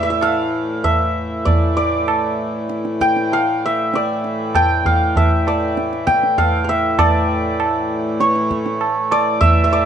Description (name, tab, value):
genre	indian classical, Hindustani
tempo	98 BPM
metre	4/4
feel	straight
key	A raga charukeshi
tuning	A4 = 440 Hz
part	santur	melody	0.0-9.9 s	C#5 to G5	-18 LUFS	right 1 dB	none
part	hand-pumped harmonium	drone	0.0-9.9 s	A2 to E3	-23 LUFS	left 1 dB	none
part	tabla	percussion	0.2-9.9 s	none	-19 LUFS	right 2 dB	none
room	moderate studio reverb, RT60 0.7 s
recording	dark, warm production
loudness	-15 LUFS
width	side -8 dB against mid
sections	0.0-7.0 A section; 7.0-9.9 B section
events	speeding up 0.0-9.9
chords	none